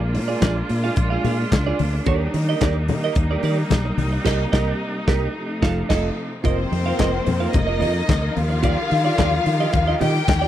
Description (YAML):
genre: disco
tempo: 110 BPM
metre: 4/4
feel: straight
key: unclear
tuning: A4 = 439 Hz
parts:
  - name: clean electric guitar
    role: accompaniment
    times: 0.0-10.5 s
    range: F4 to F5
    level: -26 LUFS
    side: right 7 dB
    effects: spring reverb
  - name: clear studio string section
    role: sustained chords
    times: 0.0-10.5 s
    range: C3 to F4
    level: -27 LUFS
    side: equal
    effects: none
  - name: fingered electric bass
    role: bass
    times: 0.0-10.5 s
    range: F1 to Eb3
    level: -22 LUFS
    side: equal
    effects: none
  - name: modern studio drum kit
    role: drums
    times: 0.1-10.4 s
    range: crash cymbal, handclaps, hi-hat, kick drum, snare drum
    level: -23 LUFS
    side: equal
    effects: none
  - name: congas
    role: percussion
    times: 0.4-10.4 s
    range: none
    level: -27 LUFS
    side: left 6 dB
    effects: none
  - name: rich studio violin section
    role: second line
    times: 6.5-10.5 s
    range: C4 to G5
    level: -23 LUFS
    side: left 5 dB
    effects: none
room: little or no reverb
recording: dry, close 1970s-style studio recording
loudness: -18 LUFS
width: side -12 dB against mid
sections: 0.0-6.4 A section; 6.4-10.5 B section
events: band accent 4.3-6.4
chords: 0.0 Bb7; 2.1 Ebmaj7; 4.0 Cm7; 5.4 F7; 6.4 F7sus4; 8.4 Ebmaj9